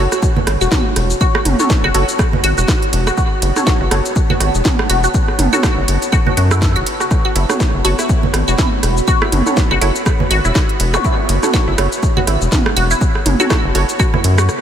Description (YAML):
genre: minimal techno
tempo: 122 BPM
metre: 4/4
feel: swing 57% on 16ths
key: F# minor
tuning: A4 = 442 Hz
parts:
  - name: resonant blip pluck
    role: riff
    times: 0.0-14.4 s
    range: E4 to F#4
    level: -21 LUFS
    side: left 1 dB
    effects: phaser, analog chorus, sidechain pumping, diffuse ambient delay
  - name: filtered dub chord stab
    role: stabs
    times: 0.0-13.8 s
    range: F#4 to C#5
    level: -25 LUFS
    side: right 2 dB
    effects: analog chorus, diffuse ambient delay
  - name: rubbery square bass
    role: bass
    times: 0.0-14.5 s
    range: E1 to F#2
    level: -16 LUFS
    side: equal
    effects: sidechain pumping
  - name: swarming drone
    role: texture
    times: 1.1-14.6 s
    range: B3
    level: -30 LUFS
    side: left 1 dB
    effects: none
  - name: warbly tape-like pad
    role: texture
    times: 0.0-14.6 s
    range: F#4 to B5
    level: -26 LUFS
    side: right 1 dB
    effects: chorus, built-in reverb, phaser, sidechain pumping
  - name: garage drum kit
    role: drums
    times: 0.1-14.6 s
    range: hi-hat, ride cymbal, rim click, shaker, snare drum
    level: -22 LUFS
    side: equal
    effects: none
  - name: organic electronic drum kit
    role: percussion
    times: 0.1-14.5 s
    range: claves, congas, rim click, toms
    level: -20 LUFS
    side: right 4 dB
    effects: overdrive, diffuse ambient delay
  - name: electronic kick drum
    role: drums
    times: 0.2-14.1 s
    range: none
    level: -17 LUFS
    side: equal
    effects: none
  - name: zap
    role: sound effects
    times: 10.9-11.0 s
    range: none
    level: -29 LUFS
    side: equal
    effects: none
room: light reverb, digital ambience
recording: none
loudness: -12 LUFS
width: side -9 dB against mid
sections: 0.0-14.6 A section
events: drum fill 14.0-14.6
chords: 0.0 F#m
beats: 0.22 0.72 | 1.21 1.70 2.19 2.68 | 3.17 3.67 4.16 4.65 | 5.14 5.63 6.13 6.62 | 7.11 7.60 8.09 8.59 | 9.08 9.57 10.06 10.55 | 11.04 11.54 12.03 12.52 | 13.01 13.50 13.99 14.49